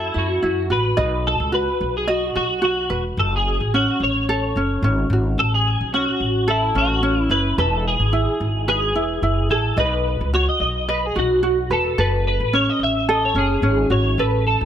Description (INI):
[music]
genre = acoustic pop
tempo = 109 BPM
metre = 4/4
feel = swing 55% on 16ths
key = unclear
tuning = A4 = 439 Hz
[part]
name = twelve-string electric guitar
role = melody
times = 0.0-14.7 s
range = E4 to E5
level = -21 LUFS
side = equal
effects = ensemble chorus, ping-pong delay
[part]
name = ukulele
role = accompaniment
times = 0.0-14.7 s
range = C#4 to D#5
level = -22 LUFS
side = right 1 dB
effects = none
[part]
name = upright bass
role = bass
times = 0.0-14.7 s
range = E1 to F#2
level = -22 LUFS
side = equal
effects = none
[sound]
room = small room ambience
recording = none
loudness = -17 LUFS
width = side -9 dB against mid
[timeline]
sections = 1.0-14.7 A section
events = none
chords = 0.0 F#m7; 1.0 B; 3.2 F#m; 5.4 A; 7.6 E; 9.8 B; 12.0 F#m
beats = 0.43 | 0.98 1.53 2.08 2.63 | 3.18 3.73 4.28 4.83 | 5.38 5.92 6.47 7.03 | 7.58 8.13 8.68 9.23 | 9.78 10.33 10.88 11.43 | 11.98 12.53 13.08 13.63 | 14.18